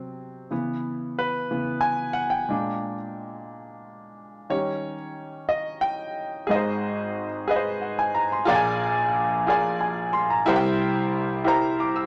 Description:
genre	gospel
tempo	60 BPM (dotted quarters)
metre	6/8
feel	straight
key	unclear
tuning	A4 = 440 Hz
part	clear concert grand piano	solo	0.0-12.1 s	Ab1 to E6	-26 LUFS	equal	none
room	moderate studio reverb, RT60 0.8 s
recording	none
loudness	-25 LUFS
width	mono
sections	0.0-6.5 A section; 6.5-12.1 B section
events	grand piano solo 0.0-6.5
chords	0.0 N.C.; 0.5 C#m7; 2.5 A#7; 4.5 D#7; 6.5 Ab; 8.5 Bb7; 10.5 C7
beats	| 0.51 1.51 | 2.51 3.50 | 4.50 5.50 | 6.50 7.49 | 8.49 9.48 | 10.47 11.47

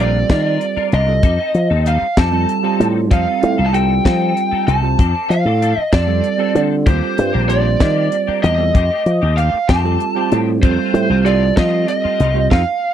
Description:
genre	electric jazz fusion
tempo	64 BPM (dotted quarters)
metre	6/8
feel	straight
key	F mixolydian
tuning	A4 = 440 Hz
part	lead guitar through a small cranked amp	melody	0.0-12.9 s	C5 to A5	-18 LUFS	right 1 dB	overdrive, slapback echo
part	bell-like tine electric piano	accompaniment	0.0-12.6 s	G3 to C5	-20 LUFS	right 11 dB	phaser
part	clean electric guitar	stabs	0.0-12.6 s	Eb3 to Bb4	-27 LUFS	left 17 dB	ensemble chorus
part	slap bass with an envelope filter	bass	0.0-12.6 s	Bb1 to F3	-16 LUFS	left 1 dB	none
part	tight funk drum kit	drums	0.3-12.7 s	hi-hat, kick drum, snare drum	-14 LUFS	left 1 dB	none
room	small room ambience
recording	dry, close 1970s-style studio recording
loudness	-13 LUFS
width	side -10 dB against mid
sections	0.0-12.9 A section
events	band accent 12.5-12.9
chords	0.0 Ebmaj9; 1.2 F9; 3.1 F7; 5.0 F69; 6.9 Ebmaj9; 8.7 F9; 10.6 F7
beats	0.30 | 1.24 2.17 | 3.11 4.05 | 4.99 5.93 | 6.87 7.81 | 8.75 9.69 | 10.63 11.57 | 12.51

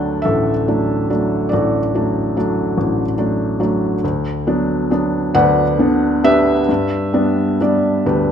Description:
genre	classical, lyrical solo piano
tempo	43-49 BPM (dotted quarters)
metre	6/8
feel	rubato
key	D major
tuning	A4 = 440 Hz
part	felt-muted upright piano	solo	0.0-8.3 s	A1 to A5	-14 LUFS	equal	none
room	moderate recital hall reverb, RT60 1.6 s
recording	none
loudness	-14 LUFS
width	side -8 dB against mid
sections	0.0-8.3 A section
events	none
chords	0.0 D; 4.0 Bm/D; 6.7 G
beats	0.24 | 1.52 2.77 | 4.03 5.34 | 6.69 8.07

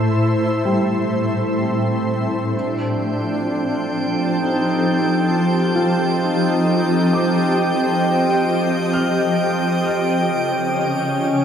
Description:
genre	ambient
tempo	66 BPM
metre	4/4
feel	straight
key	unclear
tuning	A4 = 440 Hz
part	wooden-headed alto flute	melody	0.0-11.4 s	C4 to F4	-25 LUFS	equal	shimmer reverb, diffuse ambient delay
part	shimmering ambient pad	sustained chords	0.0-11.4 s	A2 to E5	-18 LUFS	equal	chorus, built-in reverb, shimmer reverb
part	felt-muted upright piano	arpeggios	0.7-11.4 s	G3 to F6	-28 LUFS	left 1 dB	shimmer reverb, diffuse ambient delay
part	drifting glass-harmonics texture	texture	3.1-11.4 s	G5 to G6	-24 LUFS	right 1 dB	chorus, built-in reverb, shimmer reverb
room	wet cathedral reverb, RT60 4.6 s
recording	dark, warm production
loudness	-16 LUFS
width	side -8 dB against mid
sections	0.0-11.4 A section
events	fade-in on alto flute 0.0-11.4; fade-out on felt piano 0.0-11.4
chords	0.0 Am; 2.5 F7; 9.8 Db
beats	0.67 1.60 | 2.54 3.46 4.38 5.30 | 6.22 7.13 8.03 8.94 | 9.85 10.76

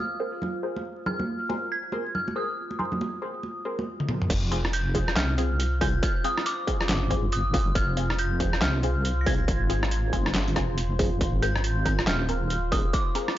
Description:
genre	deep dubstep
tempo	139 BPM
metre	4/4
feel	swing 61% on 16ths, half-time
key	F dorian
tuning	A4 = 438 Hz
part	dark detuned synth bell	melody	0.0-13.4 s	D6 to Bb6	-32 LUFS	right 1 dB	chorus, dub echo
part	deep dark ambient pad	sustained chords	0.0-13.4 s	F4 to C5	-37 LUFS	right 2 dB	chorus, built-in reverb
part	filtered dub chord stab	stabs	0.2-13.3 s	C4 to C5	-33 LUFS	left 1 dB	phaser, wide subtle chorus, dub echo
part	congas	percussion	0.4-3.9 s	none	-33 LUFS	right 2 dB	none
part	trip hop sampler-style drum kit	drums	4.0-13.3 s	crash cymbal, handclaps, hi-hat, rim click, snare drum, toms	-29 LUFS	equal	overdrive
part	deep soft wobble bass	bass	4.3-12.9 s	Eb1 to C2	-26 LUFS	equal	chorus, tube saturation
part	electronic kick drum	drums	4.3-13.0 s	none	-27 LUFS	equal	distortion
room	light reverb, digital ambience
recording	dry, gritty hardware recording, transformer saturation, vinyl crackle, nothing above 7.5 kHz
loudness	-24 LUFS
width	side -13 dB against mid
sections	0.0-4.3 A section; 4.3-13.4 B section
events	drum fill 4.0-4.3; drop 4.3-13.4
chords	0.0 Abadd9; 4.3 Fm; 11.2 Abadd9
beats	0.42 | 0.85 1.28 1.71 2.14 | 2.57 3.01 3.44 3.87 | 4.30 4.73 5.16 5.59 | 6.03 6.46 6.89 7.32 | 7.75 8.19 8.62 9.05 | 9.48 9.91 10.34 10.78 | 11.21 11.64 12.07 12.50 | 12.93 13.37

